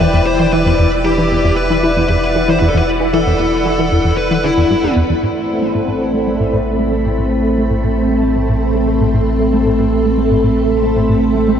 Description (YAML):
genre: ambient, sequencer-driven space music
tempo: 115 BPM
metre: 4/4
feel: straight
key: unclear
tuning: A4 = 441 Hz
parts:
  - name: high-gain lead guitar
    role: melody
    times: 0.0-4.9 s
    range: E4 to C5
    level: -19 LUFS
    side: left 1 dB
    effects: distortion, ping-pong delay
  - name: string machine, full ensemble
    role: sustained chords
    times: 0.0-11.6 s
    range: A3 to B5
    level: -15 LUFS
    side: equal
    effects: ensemble chorus
  - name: plucky analog bass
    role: riff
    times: 0.0-11.6 s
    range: E2 to A3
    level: -17 LUFS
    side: equal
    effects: ensemble chorus, ping-pong delay
  - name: warm sub bass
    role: bass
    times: 0.0-11.6 s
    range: E1 to A1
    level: -20 LUFS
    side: equal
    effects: none
  - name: Celtic harp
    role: arpeggios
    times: 5.2-11.6 s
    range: E4 to A5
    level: -35 LUFS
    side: equal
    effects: none
room: wet cathedral reverb, RT60 5.2 s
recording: dreamy mix soaked in reverb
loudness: -12 LUFS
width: side -8 dB against mid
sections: 0.0-5.2 A section; 5.2-11.6 B section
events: filter sweep on analog synth bass 0.0-5.2, 5.2-11.6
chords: 0.0 Em7; 5.2 Amadd9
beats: 0.01 0.53 | 1.05 1.57 2.09 2.61 | 3.13 3.66 4.18 4.70 | 5.22 5.74 6.27 6.79 | 7.31 7.83 8.35 8.88 | 9.40 9.92 10.44 10.96 | 11.48